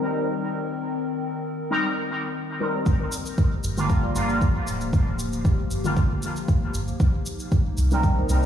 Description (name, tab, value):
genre	dub techno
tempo	116 BPM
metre	4/4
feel	straight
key	G minor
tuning	A4 = 438 Hz
part	warbly tape-like pad	sustained chords	0.0-8.5 s	C3 to Bb4	-31 LUFS	left 2 dB	chorus, built-in reverb, sidechain pumping
part	resonant sweep polysynth	stabs	0.0-8.5 s	D3 to Bb4	-27 LUFS	equal	chorus, phaser, sidechain pumping, dub echo
part	warm sub bass	bass	2.9-8.5 s	D1 to C2	-25 LUFS	equal	sidechain pumping
part	cabasa	drums	2.9-8.5 s	none	-37 LUFS	equal	none
part	electronic kick drum	drums	2.9-8.1 s	none	-21 LUFS	equal	none
room	light reverb, digital ambience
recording	played on a big sound system in a bare room, large studio reverb, studio reverb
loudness	-22 LUFS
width	side -10 dB against mid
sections	0.0-2.9 A section; 2.9-8.5 B section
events	filter sweep on analog polysynth 0.0-2.9, 2.9-8.5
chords	0.0 Cm7; 2.9 Gm7; 7.0 Cm7